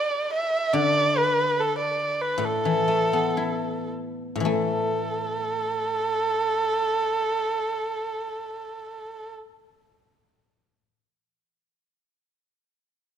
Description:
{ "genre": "chinese traditional, Chinese chamber ensemble", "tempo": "49-75 BPM", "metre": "2/4", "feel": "rubato", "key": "unclear", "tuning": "A4 = 442 Hz", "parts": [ { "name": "dark erhu", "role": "melody", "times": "0.0-9.3 s", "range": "A4 to E5", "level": "-24 LUFS", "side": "right 2 dB", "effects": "none" }, { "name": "guzheng", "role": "accompaniment", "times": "0.7-11.0 s", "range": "A2 to E4", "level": "-27 LUFS", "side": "left 4 dB", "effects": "none" } ], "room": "moderate recital hall reverb, RT60 1.7 s", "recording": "none", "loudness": "-22 LUFS", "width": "side -8 dB against mid", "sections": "0.0-4.5 A section; 4.5-9.2 B section", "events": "slowing down 0.7-4.5", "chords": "none", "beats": "| 0.72 1.53 | 2.39 3.34 | 4.47 5.67 | 6.83 8.00" }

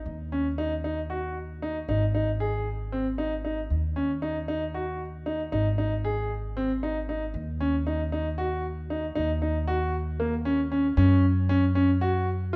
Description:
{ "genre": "contemporary instrumental, chamber music in an uneven meter", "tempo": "231 BPM (eighths)", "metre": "7/8", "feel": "straight", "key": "Eb minor", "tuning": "A4 = 440 Hz", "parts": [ { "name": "upright bass", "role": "bass", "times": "0.0-12.6 s", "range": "Ab1 to Gb2", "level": "-31 LUFS", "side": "equal", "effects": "none" }, { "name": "clear concert grand piano", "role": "arpeggios", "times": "0.3-12.6 s", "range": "Bb3 to Ab4", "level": "-30 LUFS", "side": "equal", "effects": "none" } ], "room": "moderate scoring stage reverb, RT60 1.9 s", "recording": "dark, warm production", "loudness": "-27 LUFS", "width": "mono", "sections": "0.0-11.0 A section; 11.0-12.6 B section", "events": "none", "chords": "0.1 Ebm; 1.9 Ab5; 3.7 Ebm; 5.5 Ab5; 7.3 Ebm; 11.0 Gb5", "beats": "| 0.06 0.32 0.58 0.84 1.10 1.36 1.62 | 1.89 2.15 2.40 2.67 2.93 3.19 3.45 | 3.71 3.97 4.23 4.49 4.75 5.01 5.27 | 5.53 5.79 6.05 6.31 6.57 6.83 7.08 | 7.34 7.60 7.86 8.12 8.38 8.64 8.90 | 9.16 9.42 9.68 9.94 10.20 10.46 10.72 | 10.98 11.24 11.49 11.75 12.01 12.27 12.53" }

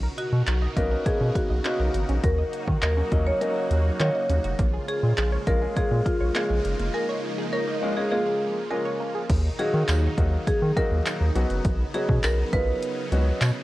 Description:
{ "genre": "dance-pop", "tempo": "102 BPM", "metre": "4/4", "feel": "straight", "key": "Eb minor", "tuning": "A4 = 441 Hz", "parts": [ { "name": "supersaw chords", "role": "sustained chords", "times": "0.0-13.6 s", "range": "Bb2 to A#4", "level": "-34 LUFS", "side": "right 1 dB", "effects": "phaser, sidechain pumping" }, { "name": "wide unison pluck", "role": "arpeggios", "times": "0.0-9.3 s", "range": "Bb3 to D#5", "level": "-36 LUFS", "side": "right 3 dB", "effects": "sidechain pumping, analog delay" }, { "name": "round analog bass", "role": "bass", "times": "0.0-13.5 s", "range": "F1 to Eb3", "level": "-24 LUFS", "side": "equal", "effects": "sidechain pumping" }, { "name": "marimba with medium hard mallets", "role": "melody", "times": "0.2-13.6 s", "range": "F4 to Db5", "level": "-28 LUFS", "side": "equal", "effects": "cassette tape, analog delay" }, { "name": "punchy analog drum machine", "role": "drums", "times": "0.2-13.6 s", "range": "crash cymbal, handclaps, hi-hat, kick drum", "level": "-27 LUFS", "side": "equal", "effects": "overdrive, cassette tape" }, { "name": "clear baby grand piano", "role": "accompaniment", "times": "0.8-13.6 s", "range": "Eb3 to Ab4", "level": "-31 LUFS", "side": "left 1 dB", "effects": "sidechain pumping" }, { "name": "swell", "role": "sound effects", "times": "6.6-8.1 s", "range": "none", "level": "-36 LUFS", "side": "equal", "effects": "none" }, { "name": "tambourine", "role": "percussion", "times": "9.9-13.6 s", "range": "none", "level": "-41 LUFS", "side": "right 9 dB", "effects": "none" } ], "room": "light reverb, digital ambience", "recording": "home recording on cassette", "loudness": "-22 LUFS", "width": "side -17 dB against mid", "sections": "0.0-9.3 A section; 9.3-13.6 B section", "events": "swell 6.6-9.3; break 6.9-9.3", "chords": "0.0 Bmaj9; 2.2 Ebm7; 4.6 Bbm7; 9.3 Ebm; 11.4 Badd9", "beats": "0.47 1.06 1.65 | 2.24 2.83 3.41 4.00 | 4.59 5.18 5.77 6.35 | 6.94 7.53 8.12 8.71 | 9.30 9.88 10.47 11.06 | 11.65 12.24 12.82 13.41" }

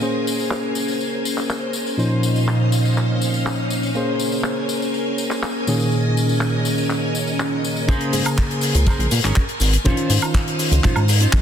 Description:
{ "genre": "nu-disco, nu disco", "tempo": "122 BPM", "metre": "4/4", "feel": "straight", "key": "Bb minor", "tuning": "A4 = 441 Hz", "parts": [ { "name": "bell-like tine electric piano", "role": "accompaniment", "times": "0.0-11.1 s", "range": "Bb2 to C5", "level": "-22 LUFS", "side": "equal", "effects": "sidechain pumping, low-pass filter, ping-pong delay" }, { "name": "string machine, full ensemble", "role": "sustained chords", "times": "0.0-11.4 s", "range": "Bb2 to C6", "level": "-23 LUFS", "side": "equal", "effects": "ensemble chorus, sidechain pumping" }, { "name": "tambourine", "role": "percussion", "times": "0.0-11.4 s", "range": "none", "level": "-30 LUFS", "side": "left 6 dB", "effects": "none" }, { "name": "damped 70s drum kit", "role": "drums", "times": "0.5-11.4 s", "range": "cabasa, handclaps, hi-hat, woodblock", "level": "-26 LUFS", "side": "left 1 dB", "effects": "low-pass filter on hats, small room ambience, low-pass filter on snare, low-pass filter on perc, low-pass filter on room" }, { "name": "electric guitar with an envelope filter", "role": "riff", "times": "7.9-11.4 s", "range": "Db4 to Db5", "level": "-27 LUFS", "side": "equal", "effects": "analog chorus, ping-pong delay" }, { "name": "chorused synth bass", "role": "bass", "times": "7.9-11.4 s", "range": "Ab1 to Bb2", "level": "-18 LUFS", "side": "equal", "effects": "tube saturation" }, { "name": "kick drum", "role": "drums", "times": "7.9-11.4 s", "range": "none", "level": "-18 LUFS", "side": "equal", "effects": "small room ambience" } ], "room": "light reverb, small room reverb", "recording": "dense, heavily limited modern master", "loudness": "-17 LUFS", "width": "side -9 dB against mid", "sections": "0.0-7.9 A section; 7.9-11.4 B section", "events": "filter sweep on tine electric piano 0.0-7.9; drop 7.9-11.4", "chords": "0.0 Bbm9; 2.0 Dbmaj9/Bb; 4.0 Bbm9; 5.7 Eb7sus4/Bb; 7.9 Bbm9; 9.9 Dbmaj9/Bb", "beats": "| 0.02 0.51 1.00 1.50 | 1.99 2.48 2.97 3.46 | 3.95 4.45 4.94 5.43 | 5.92 6.41 6.91 7.40 | 7.89 8.38 8.87 9.36 | 9.86 10.35 10.84 11.33" }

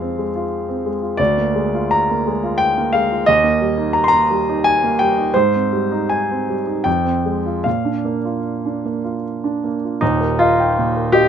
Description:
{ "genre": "classical, romantic character piece for solo piano", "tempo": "74-92 BPM", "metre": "3/4", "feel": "rubato", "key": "Eb major", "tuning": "A4 = 437 Hz", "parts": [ { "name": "warm grand piano", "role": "solo", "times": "0.0-11.3 s", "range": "Eb1 to C6", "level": "-16 LUFS", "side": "equal", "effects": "none" } ], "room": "light reverb", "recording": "close, detailed microphones", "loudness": "-16 LUFS", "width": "side -8 dB against mid", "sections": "0.0-10.0 A section; 10.0-11.3 B section", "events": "none", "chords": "0.0 Fm; 1.2 Bb7/D; 3.3 Eb; 5.3 Abmaj7; 6.9 Fm; 7.7 Bb; 10.0 Eb", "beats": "0.51 | 1.19 1.92 2.60 | 3.28 3.96 4.64 | 5.34 6.10 6.86 | 7.65 8.45 9.23 | 10.01 10.77" }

